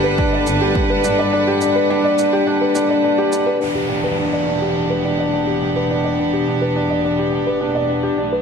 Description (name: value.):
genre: piano and strings electronica.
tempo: 105 BPM.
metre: 4/4.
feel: straight.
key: unclear.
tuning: A4 = 442 Hz.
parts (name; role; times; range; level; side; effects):
rich chamber string section; sustained chords; 0.0-8.4 s; E3 to F#5; -22 LUFS; equal; none.
felt-muted upright piano; riff; 0.0-8.4 s; D4 to D5; -17 LUFS; equal; low-pass filter, digital delay.
dark chamber double bass section; bass; 0.0-8.4 s; E1 to G2; -27 LUFS; equal; sidechain pumping.
electronic kick drum; drums; 0.2-0.9 s; none; -22 LUFS; right 1 dB; overdrive.
shaker; drums; 0.5-3.4 s; none; -31 LUFS; right 5 dB; none.
downlifter; sound effects; 3.6-8.2 s; none; -29 LUFS; right 1 dB; none.
room: moderate concert hall reverb, RT60 1.9 s, small room ambience.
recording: none.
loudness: -15 LUFS.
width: side -6 dB against mid.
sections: 0.0-3.6 A section; 3.6-8.4 B section.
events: none.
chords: 0.0 Gmaj7; 3.6 Em7.